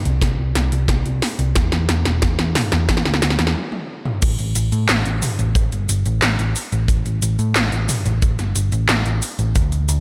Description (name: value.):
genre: synthwave.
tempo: 90 BPM.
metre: 4/4.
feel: straight.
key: unclear.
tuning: A4 = 436 Hz.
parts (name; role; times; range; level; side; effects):
hollow-body short-scale picked electric bass; bass; 0.1-10.0 s; E1 to A2; -22 LUFS; equal; none.
80s electronic pad drums; drums; 0.1-10.0 s; cabasa, crash cymbal, handclaps, hi-hat, snare drum, toms; -23 LUFS; equal; gated reverb on snare and toms.
kick drum; drums; 0.2-9.7 s; none; -24 LUFS; equal; none.
room: light reverb.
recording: none.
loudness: -19 LUFS.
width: mono.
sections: 0.0-4.2 A section; 4.2-10.0 B section.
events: drum fill 0.0-3.6, 3.6-4.2; stop 3.6-4.2.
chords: none.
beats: 0.22 0.89 | 1.56 2.22 2.89 3.56 | 4.22 4.89 5.56 6.22 | 6.89 7.56 8.22 8.89 | 9.56.